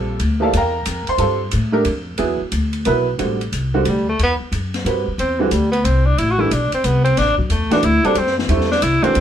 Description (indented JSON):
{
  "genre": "modal jazz",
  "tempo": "181 BPM",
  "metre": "3/4",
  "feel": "swing 65% on 8ths",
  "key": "G dorian, A dorian from 3.2 s",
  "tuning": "A4 = 440 Hz",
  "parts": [
    { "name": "clear upright piano", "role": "accompaniment", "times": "0.0-9.2 s", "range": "D3 to C6", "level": "-19 LUFS", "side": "right 2 dB", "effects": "none" },
    { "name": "upright bass", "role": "bass", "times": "0.0-9.2 s", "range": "A1 to A2", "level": "-19 LUFS", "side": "left 1 dB", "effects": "none" },
    { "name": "open jazz drum kit", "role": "drums", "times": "0.2-9.2 s", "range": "hi-hat, kick drum, ride cymbal, snare drum", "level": "-27 LUFS", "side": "left 2 dB", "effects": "none" },
    { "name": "mellow tenor saxophone", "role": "melody", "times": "3.9-9.2 s", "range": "E3 to F#4", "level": "-18 LUFS", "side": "equal", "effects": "none" }
  ],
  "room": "moderate small room reverb, RT60 0.6 s",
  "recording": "band playing live in one room",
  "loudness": "-15 LUFS",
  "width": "side -9 dB against mid",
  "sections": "0.0-3.2 A section; 3.2-9.2 A section",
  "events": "tenor saxophone solo 3.2-9.2",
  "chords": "0.0 Gm9; 2.2 E7; 3.2 Am7",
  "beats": "| 0.19 0.53 0.86 | 1.19 1.52 1.86 | 2.19 2.52 2.86 | 3.19 3.52 3.85 | 4.19 4.52 4.85 | 5.18 5.51 5.85 | 6.18 6.51 6.84 | 7.17 7.50 7.83 | 8.17 8.50 8.83 | 9.16"
}